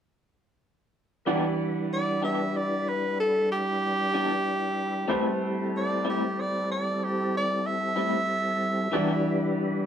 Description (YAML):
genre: blues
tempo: 63 BPM (dotted quarters)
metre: 12/8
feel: straight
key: E minor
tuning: A4 = 436 Hz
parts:
  - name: bright grand piano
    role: accompaniment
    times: 1.3-9.9 s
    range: E3 to F#5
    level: -32 LUFS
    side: right 2 dB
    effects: none
  - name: electric guitar through a small old amp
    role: accompaniment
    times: 1.3-9.1 s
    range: A2 to G4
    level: -29 LUFS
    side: left 3 dB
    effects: tremolo
  - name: tonewheel organ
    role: sustained chords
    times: 1.3-9.9 s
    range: G3 to B4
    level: -30 LUFS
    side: left 1 dB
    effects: chorus vibrato, slow rotary speaker
  - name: clear tenor saxophone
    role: melody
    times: 1.9-9.5 s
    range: G4 to E5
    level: -27 LUFS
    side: right 1 dB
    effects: none
room: moderate studio reverb, RT60 0.6 s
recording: band playing live in one room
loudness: -24 LUFS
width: side -8 dB against mid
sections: 1.3-9.9 A section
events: none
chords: 1.3 Em7; 5.1 Am7; 8.9 Em7